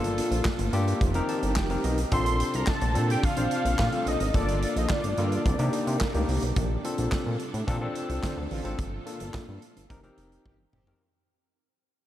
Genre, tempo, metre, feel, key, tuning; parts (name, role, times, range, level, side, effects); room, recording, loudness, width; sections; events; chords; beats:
early-eighties boogie funk; 108 BPM; 4/4; straight; A4 = 440 Hz
overdriven tine electric piano; accompaniment; 0.0-11.0 s; Bb3 to A5; -31 LUFS; left 2 dB
warm studio string section; sustained chords; 0.0-11.0 s; Bb2 to A4; -37 LUFS; right 2 dB
chorused synth bass; bass; 0.0-10.9 s; F1 to C3; -28 LUFS; equal
modern studio drum kit; drums; 0.0-11.0 s; handclaps, hi-hat, kick drum, snare drum, toms; -30 LUFS; equal
fat analog lead; melody; 2.1-6.3 s; D5 to C6; -31 LUFS; equal; chorus, phaser, analog delay
analog synth brass; second line; 4.5-11.1 s; D3 to G4; -39 LUFS; right 3 dB
moderate huge ambient reverb, RT60 4.2 s; dreamy mix soaked in reverb; -24 LUFS; side -12 dB against mid
0.0-6.6 A section; 6.6-11.0 B section
tine electric piano fill 1.0-2.1; band accent 4.3-6.6; fade-out 6.6-11.0; drum fill 10.5-11.0
0.0 Gm9; 1.0 F9sus4; 2.1 Bbmaj9; 4.3 Gm9; 5.5 Cm7; 6.6 Bbmaj9; 8.8 Gm9; 9.9 F9sus4
0.45 1.01 1.56 | 2.12 2.67 3.23 3.79 | 4.34 4.90 5.45 6.01 | 6.56 7.12 7.67 8.23 | 8.79 9.34 9.90 10.45